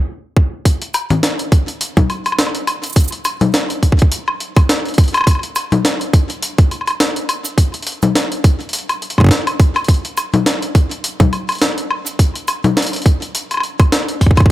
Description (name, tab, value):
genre	IDM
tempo	104 BPM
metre	4/4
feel	swing 56% on 16ths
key	none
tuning	none
part	electronic kick drum	drums	0.4-14.5 s	none	-11 LUFS	equal	none
part	jungle sampler-style drum kit	drums	0.7-14.5 s	congas, hi-hat, shaker, snare drum, woodblock	-16 LUFS	left 1 dB	overdrive, low-pass filter on perc, low-pass filter on hats, low-pass filter on snare, low-pass filter on room
room	little or no reverb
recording	none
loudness	-13 LUFS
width	side -15 dB against mid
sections	0.7-14.5 A section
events	none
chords	none